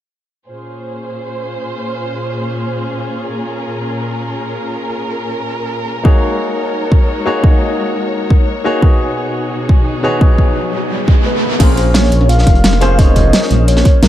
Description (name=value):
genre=liquid drum and bass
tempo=173 BPM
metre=4/4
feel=straight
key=Bb minor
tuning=A4 = 440 Hz
part: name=dark studio string section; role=sustained chords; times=0.5-11.6 s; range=Bb2 to Db5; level=-21 LUFS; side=equal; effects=low-pass filter
part: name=clear concert grand piano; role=accompaniment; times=6.0-14.1 s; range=Bb3 to Db5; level=-18 LUFS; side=left 2 dB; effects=tape echo
part: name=electronic kick drum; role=drums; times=6.0-13.9 s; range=none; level=-10 LUFS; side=equal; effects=overdrive
part: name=riser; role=sound effects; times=9.5-11.6 s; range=none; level=-21 LUFS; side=right 1 dB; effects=none
part: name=warm velvety synth lead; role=melody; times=11.3-14.1 s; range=Bb4 to F5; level=-18 LUFS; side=left 1 dB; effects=chorus, tremolo, dub echo
part: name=swelling detuned saw bass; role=bass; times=11.6-14.1 s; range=F1 to C2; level=-12 LUFS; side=equal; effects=none
part: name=crunchy breakbeat drum kit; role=drums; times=11.6-14.1 s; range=hi-hat, snare drum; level=-22 LUFS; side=equal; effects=high-pass filter on hats, high-pass filter on snare, high-pass filter on room
part: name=pop drum kit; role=drums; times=11.6-14.1 s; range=crash cymbal, hi-hat, snare drum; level=-16 LUFS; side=equal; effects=overdrive
room=light reverb, small room reverb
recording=dark, warm production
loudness=-12 LUFS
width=side -12 dB against mid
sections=0.5-11.6 A section; 11.6-14.1 B section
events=riser 9.5-11.6; drop 11.6-14.1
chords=0.5 Bbm9; 6.0 Ab9sus4; 8.8 B69; 11.6 Bbm9